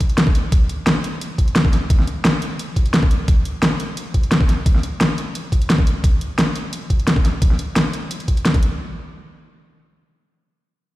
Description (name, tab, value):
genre	liquid drum and bass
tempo	174 BPM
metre	4/4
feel	straight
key	none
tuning	none
part	electronic kick drum	drums	0.0-8.6 s	none	-16 LUFS	equal	overdrive
part	pop drum kit	drums	0.0-8.7 s	hi-hat, snare drum	-19 LUFS	equal	overdrive
room	moderate lush hall reverb, RT60 2.2 s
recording	played on a big sound system in a bare room, stone room reverb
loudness	-16 LUFS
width	side -17 dB against mid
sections	0.0-8.8 A section; 8.8-11.0 B section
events	none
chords	none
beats	0.18 | 0.52 0.87 1.21 1.56 | 1.90 2.25 2.59 2.94 | 3.28 3.62 3.97 4.32 | 4.66 5.00 5.35 5.69 | 6.04 6.38 6.73 7.07 | 7.42 7.76 8.11 8.45